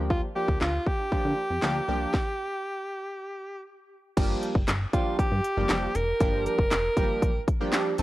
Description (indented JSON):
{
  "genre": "dance-pop",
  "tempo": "118 BPM",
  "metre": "4/4",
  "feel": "straight",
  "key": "G minor",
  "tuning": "A4 = 439 Hz",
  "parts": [
    { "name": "chorused retro synth keys", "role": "accompaniment", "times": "0.0-8.0 s", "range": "F3 to A4", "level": "-31 LUFS", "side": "right 1 dB", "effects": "sidechain pumping" },
    { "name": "plucky analog bass", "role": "bass", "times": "0.0-8.0 s", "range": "F1 to D3", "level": "-30 LUFS", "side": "equal", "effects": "sidechain pumping" },
    { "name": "edgy alto saxophone", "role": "melody", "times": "0.1-7.4 s", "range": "F4 to Bb4", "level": "-29 LUFS", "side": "right 1 dB", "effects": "none" },
    { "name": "house drum kit", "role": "drums", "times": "0.1-8.0 s", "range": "crash cymbal, handclaps, hi-hat, kick drum, snare drum", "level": "-26 LUFS", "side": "equal", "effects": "none" }
  ],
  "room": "digital ambience",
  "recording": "dry, gritty hardware recording",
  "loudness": "-24 LUFS",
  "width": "side -16 dB against mid",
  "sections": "0.0-4.2 A section; 4.2-8.0 B section",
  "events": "stop 2.1-4.2",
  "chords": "0.0 Bb6; 4.2 Gm7"
}